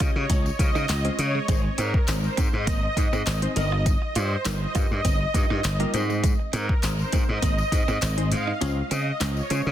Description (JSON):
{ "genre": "dance-pop", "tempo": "101 BPM", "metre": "4/4", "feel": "straight", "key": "Ab major", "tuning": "A4 = 441 Hz", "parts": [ { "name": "glassy wavetable pluck", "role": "accompaniment", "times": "0.0-9.7 s", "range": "G3 to C5", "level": "-33 LUFS", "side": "left 2 dB", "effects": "chorus, sidechain pumping" }, { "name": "direct-recorded clean electric guitar", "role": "riff", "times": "0.0-9.6 s", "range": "Ab3 to F4", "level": "-34 LUFS", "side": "right 9 dB", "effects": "lush chorus" }, { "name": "glassy slap bass", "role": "bass", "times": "0.0-9.7 s", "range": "G1 to Db3", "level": "-26 LUFS", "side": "equal", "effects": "sidechain pumping" }, { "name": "deep house drum kit", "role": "drums", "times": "0.0-9.7 s", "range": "handclaps, hi-hat, kick drum, snare drum", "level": "-24 LUFS", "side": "equal", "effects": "none" }, { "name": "tambourine", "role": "percussion", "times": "0.0-9.7 s", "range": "none", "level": "-39 LUFS", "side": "left 13 dB", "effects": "none" }, { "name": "supersaw pad", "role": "melody", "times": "0.2-9.7 s", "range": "Eb5", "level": "-30 LUFS", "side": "right 1 dB", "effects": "sidechain pumping, digital delay" } ], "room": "little or no reverb", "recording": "dense, heavily limited modern master", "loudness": "-21 LUFS", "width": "side -11 dB against mid", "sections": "0.0-9.7 A section", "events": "kick muted 8.6-9.7", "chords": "0.0 Dbmaj7; 1.5 Ab; 3.6 Ebadd9/G; 5.9 Ab; 8.6 Dbmaj7", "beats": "0.30 0.89 | 1.49 2.08 2.67 3.27 | 3.86 4.46 5.05 5.64 | 6.24 6.83 7.43 8.02 | 8.61 9.21" }